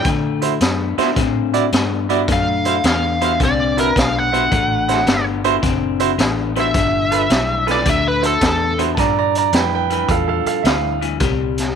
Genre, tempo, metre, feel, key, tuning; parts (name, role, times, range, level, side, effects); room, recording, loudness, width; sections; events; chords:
electric blues shuffle; 108 BPM; 4/4; swing 67% on 8ths; A4 = 440 Hz
smooth overdriven lead guitar; melody; 0.0-8.8 s; A4 to F#5; -19 LUFS; equal
electric guitar through a small old amp; riff; 0.0-11.7 s; G2 to C4; -22 LUFS; left 15 dB
vintage muted fingered electric bass; bass; 0.0-11.7 s; F#1 to D3; -24 LUFS; equal
raw garage drum kit; drums; 0.0-11.7 s; hi-hat, kick drum, snare drum; -21 LUFS; equal
bright concert grand piano; accompaniment; 0.4-11.0 s; E4 to Bb5; -21 LUFS; right 13 dB
light reverb, small room ambience; 1960s-style stereo with parts hard left and right; -15 LUFS; side -7 dB against mid
0.0-9.0 A section; 9.0-11.8 B section
0.1 D9; 6.7 G9; 7.9 D9; 9.0 G9; 11.2 C5